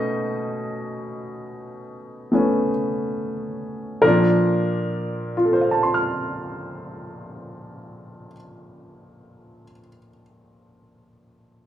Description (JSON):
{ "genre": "solo jazz", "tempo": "45-57 BPM", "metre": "4/4", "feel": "swing 69% on 8ths, rubato", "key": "Bb major", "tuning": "A4 = 441 Hz", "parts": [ { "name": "warm upright piano", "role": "solo", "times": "0.0-11.7 s", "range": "Bb2 to F6", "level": "-21 LUFS", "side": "equal", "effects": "none" } ], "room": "wet large studio reverb, RT60 1.1 s", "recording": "band playing live in one room", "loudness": "-20 LUFS", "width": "side -11 dB against mid", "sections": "0.0-4.0 A section; 4.0-9.2 B section", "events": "slowing down 0.0-4.0", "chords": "0.0 B9; 4.0 Bbmaj7" }